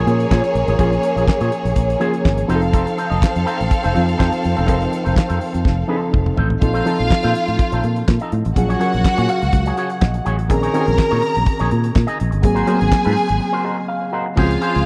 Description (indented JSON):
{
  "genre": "disco",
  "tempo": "124 BPM",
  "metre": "4/4",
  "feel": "straight",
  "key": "unclear",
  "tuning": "A4 = 439 Hz",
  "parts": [
    { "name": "warm symphonic violin section", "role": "second line", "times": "0.0-14.9 s", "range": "Bb3 to Bb5", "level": "-24 LUFS", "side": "equal", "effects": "none" },
    { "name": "electric guitar with an envelope filter", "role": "accompaniment", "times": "0.0-14.8 s", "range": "Eb4 to Eb5", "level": "-28 LUFS", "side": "equal", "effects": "tube saturation, spring reverb" },
    { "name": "reed electric piano", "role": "accompaniment", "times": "0.0-14.9 s", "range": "Eb3 to Gb5", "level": "-24 LUFS", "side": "equal", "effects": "overdrive, spring reverb" },
    { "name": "fingered electric bass", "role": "bass", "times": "0.0-14.8 s", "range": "E1 to Bb2", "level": "-22 LUFS", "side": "equal", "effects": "none" },
    { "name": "damped 70s drum kit", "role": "drums", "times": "0.1-14.9 s", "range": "crash cymbal, handclaps, hi-hat, kick drum, snare drum, toms", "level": "-19 LUFS", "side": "equal", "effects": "none" }
  ],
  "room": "small room ambience",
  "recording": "dry, close 1970s-style studio recording",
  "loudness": "-18 LUFS",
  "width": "mono",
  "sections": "0.0-6.6 A section; 6.6-14.4 B section",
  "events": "drum fill 5.6-6.6; reed electric piano fill 9.0-10.5, 13.4-14.4; break 13.4-14.4",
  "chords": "0.0 Bbm7; 2.5 F7; 6.6 F7/Bb; 8.6 Ebm11/Bb; 10.5 Bbm11; 12.4 Ab9"
}